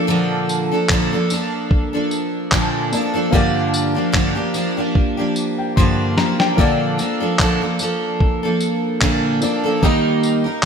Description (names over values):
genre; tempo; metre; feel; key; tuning
acoustic pop; 74 BPM; 4/4; swing 55% on 16ths; Bb major; A4 = 440 Hz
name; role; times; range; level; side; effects
clear upright piano; accompaniment; 0.0-10.7 s; Bb3 to C6; -25 LUFS; left 3 dB; lush chorus
picked steel-string acoustic guitar; accompaniment; 0.0-10.6 s; G2 to Bb4; -18 LUFS; right 1 dB; double-tracked left and right
dusty soul sampler-style drum kit; drums; 0.5-10.7 s; handclaps, kick drum, snare drum, tambourine; -19 LUFS; equal; none
room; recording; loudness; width
moderate plate reverb, RT60 2.4 s; bright 1980s-style digital production; -16 LUFS; side -6 dB against mid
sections
0.0-10.7 A section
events
drum fill 5.8-6.6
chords
0.0 Bbmaj7; 3.3 Gm7; 6.6 Bbmaj7; 9.8 Eb